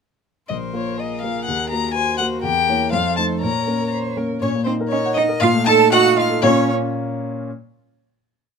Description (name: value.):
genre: quick classical-period movement for piano quartet.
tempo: 121 BPM.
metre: 2/4.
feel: straight.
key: Bb minor.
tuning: A4 = 440 Hz.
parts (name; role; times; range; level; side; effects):
warm violin; melody; 0.5-6.7 s; C5 to Bb5; -22 LUFS; left 7 dB; none.
clear violin; second line; 0.5-6.7 s; Bb4 to A5; -26 LUFS; left 1 dB; none.
rich cello; second line; 0.5-6.7 s; C4 to C5; -21 LUFS; right 10 dB; none.
dark baby grand piano; accompaniment; 0.5-7.5 s; Bb1 to Gb5; -21 LUFS; left 1 dB; none.
room: light reverb.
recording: close, detailed microphones.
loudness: -16 LUFS.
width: side -6 dB against mid.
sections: 0.5-4.4 A section; 4.4-6.4 coda; 6.4-7.5 final chord.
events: none.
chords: 0.5 Bb5; 1.5 Ebm; 2.4 Edim7; 2.9 F7; 3.4 Bbm; 4.4 Ebm/Bb; 5.4 F7/Bb; 6.4 Bbm.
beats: | 0.49 0.98 | 1.47 1.96 | 2.44 2.93 | 3.42 3.92 | 4.42 4.92 | 5.42 5.92 | 6.44 6.95.